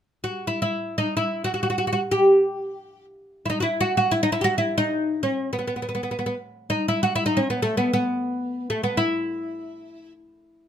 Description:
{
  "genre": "Persian modal ensemble",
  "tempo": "free time",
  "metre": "none",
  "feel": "none",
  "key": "E avaz esfahan",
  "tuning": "A4 = 440 Hz",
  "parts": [
    { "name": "oud", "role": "solo", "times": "0.2-10.1 s", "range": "A3 to G4", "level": "-21 LUFS", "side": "equal", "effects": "none" }
  ],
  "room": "light reverb",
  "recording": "close, detailed microphones",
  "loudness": "-21 LUFS",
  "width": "side -9 dB against mid",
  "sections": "0.0-10.7 A section",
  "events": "none",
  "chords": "none"
}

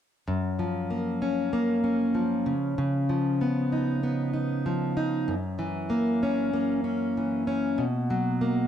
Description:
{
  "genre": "indie pop",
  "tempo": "96 BPM",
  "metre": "4/4",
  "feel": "straight",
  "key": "F# major",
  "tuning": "A4 = 440 Hz",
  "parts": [
    { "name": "fingerpicked plugged-in steel-string acoustic guitar", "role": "accompaniment", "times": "0.3-8.7 s", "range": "F#2 to D#4", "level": "-24 LUFS", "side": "equal", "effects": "wide subtle chorus, warbly pitch drift" }
  ],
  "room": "moderate spring reverb, RT60 2.0 s",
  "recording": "none",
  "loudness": "-25 LUFS",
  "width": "side -9 dB against mid",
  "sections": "0.3-8.7 A section",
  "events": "none",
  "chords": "0.3 F#maj7; 2.5 C#9; 5.3 F#7; 7.8 Bmaj7(no3)"
}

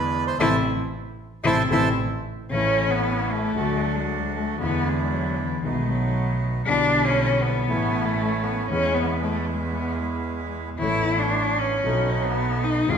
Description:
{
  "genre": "tango",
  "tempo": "115 BPM",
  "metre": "4/4",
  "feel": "rubato",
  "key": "A major",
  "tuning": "A4 = 439 Hz",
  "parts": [
    { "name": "bandoneon", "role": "melody", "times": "0.0-1.9 s", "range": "B4 to A5", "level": "-25 LUFS", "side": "right 3 dB", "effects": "none" },
    { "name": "dark concert grand piano", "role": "accompaniment", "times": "0.0-13.0 s", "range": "G#1 to C#5", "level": "-27 LUFS", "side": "left 2 dB", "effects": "none" },
    { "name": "bandoneon", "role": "stabs", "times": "0.0-13.0 s", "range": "D3 to C#5", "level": "-30 LUFS", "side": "right 4 dB", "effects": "none" },
    { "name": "clear double bass", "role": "bass", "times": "0.0-13.0 s", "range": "G#1 to E2", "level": "-28 LUFS", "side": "right 2 dB", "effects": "none" },
    { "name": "rich cello", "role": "second line", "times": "0.4-13.0 s", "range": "E3 to F4", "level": "-24 LUFS", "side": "left 2 dB", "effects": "none" }
  ],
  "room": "wet recital hall reverb, RT60 1.4 s",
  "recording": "recorded in a church or concert hall",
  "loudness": "-21 LUFS",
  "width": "side -7 dB against mid",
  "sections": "0.0-2.5 A section; 2.5-13.0 B section",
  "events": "band accent 0.4-2.5; cello solo 2.5-13.0",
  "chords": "0.4 Am; 2.5 A; 3.6 D; 4.6 E7; 5.6 B7; 6.7 Em7/B; 7.7 A; 8.7 E; 10.8 Aadd9; 11.9 B7"
}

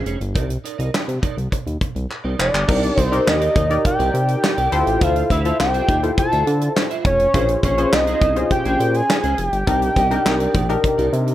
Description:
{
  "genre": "early-eighties boogie funk",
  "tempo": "103 BPM",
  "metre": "4/4",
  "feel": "straight",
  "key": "unclear",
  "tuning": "A4 = 436 Hz",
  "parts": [
    { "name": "clean electric guitar", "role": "riff", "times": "0.0-11.3 s", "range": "Db4 to F5", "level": "-30 LUFS", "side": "right 6 dB", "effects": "tube saturation, ensemble chorus" },
    { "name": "fat analog bass", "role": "bass", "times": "0.0-11.3 s", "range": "F1 to D3", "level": "-22 LUFS", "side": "equal", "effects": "none" },
    { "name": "modern studio drum kit", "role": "drums", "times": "0.1-11.3 s", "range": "crash cymbal, handclaps, hi-hat, kick drum, snare drum", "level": "-22 LUFS", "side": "equal", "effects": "none" },
    { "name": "fat analog lead", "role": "melody", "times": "2.4-11.3 s", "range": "Db5 to A5", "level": "-20 LUFS", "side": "equal", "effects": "slapback echo" },
    { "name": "funky polysynth comp", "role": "accompaniment", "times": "2.7-11.3 s", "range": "Db4 to D5", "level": "-22 LUFS", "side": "left 2 dB", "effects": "chorus" },
    { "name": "warm horn section", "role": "second line", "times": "10.3-10.4 s", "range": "Bb3 to Bb4", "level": "-31 LUFS", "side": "left 2 dB", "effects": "none" }
  ],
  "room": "light reverb, studio ambience",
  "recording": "none",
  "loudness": "-16 LUFS",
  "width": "side -13 dB against mid",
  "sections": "0.0-2.7 A section; 2.7-11.3 B section",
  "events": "drum fill 2.1-2.7; band accent 9.7-11.3",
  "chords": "0.4 Cm9; 4.7 Dm9; 7.3 Bbm9; 9.7 Cm9"
}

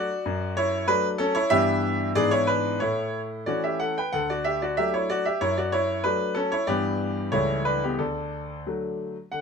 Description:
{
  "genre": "classical-period piano sonatina",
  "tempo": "88-96 BPM",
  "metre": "2/4",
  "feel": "rubato",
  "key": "D major",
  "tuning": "A4 = 442 Hz",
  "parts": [
    { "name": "clear concert grand piano", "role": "solo", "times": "0.0-9.4 s", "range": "C#2 to G5", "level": "-23 LUFS", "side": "equal", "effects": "none" }
  ],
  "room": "light reverb",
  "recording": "minimal, uncompressed stereo recording",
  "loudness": "-23 LUFS",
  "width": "side -6 dB against mid",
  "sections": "0.0-9.3 A section",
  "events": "none",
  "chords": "0.3 D/F#; 1.5 Em7/G; 2.2 E7/G#; 2.8 A; 4.1 D; 5.4 D/F#; 6.7 Em7/G; 7.3 A7/C#; 8.0 D"
}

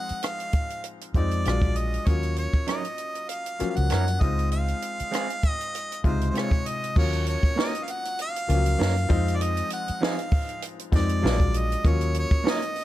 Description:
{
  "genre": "lush 1970s-style soul",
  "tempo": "98 BPM",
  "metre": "4/4",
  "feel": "swing 54% on 16ths",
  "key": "Eb dorian",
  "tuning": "A4 = 440 Hz",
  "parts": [
    { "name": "clear harmonica", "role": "melody", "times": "0.0-12.8 s", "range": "C5 to Gb5", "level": "-30 LUFS", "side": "right 1 dB", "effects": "none" },
    { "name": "clear baby grand piano", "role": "accompaniment", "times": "0.0-12.8 s", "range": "C3 to F4", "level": "-32 LUFS", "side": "left 5 dB", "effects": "none" },
    { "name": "vintage muted fingered electric bass", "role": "bass", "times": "0.1-12.3 s", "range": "Bb1 to Gb2", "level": "-24 LUFS", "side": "equal", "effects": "none" },
    { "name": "compact cocktail drum kit", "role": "drums", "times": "0.1-12.8 s", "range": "crash cymbal, hi-hat, kick drum, rim click, snare drum", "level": "-25 LUFS", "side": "equal", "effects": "none" },
    { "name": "electric guitar through a small old amp", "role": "riff", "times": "2.7-12.6 s", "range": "F3 to Bb4", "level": "-33 LUFS", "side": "right 4 dB", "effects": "harmonic tremolo" }
  ],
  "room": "small room ambience",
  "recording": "none",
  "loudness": "-23 LUFS",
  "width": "side -14 dB against mid",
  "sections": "0.0-7.0 A section; 7.0-12.8 A section",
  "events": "none",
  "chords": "0.0 Fm7; 1.5 Bb7b13; 2.1 Ebm7; 4.2 Dbmaj7; 7.0 Ebm7; 9.1 Fm7; 11.2 Bb7b13; 11.8 Ebm7"
}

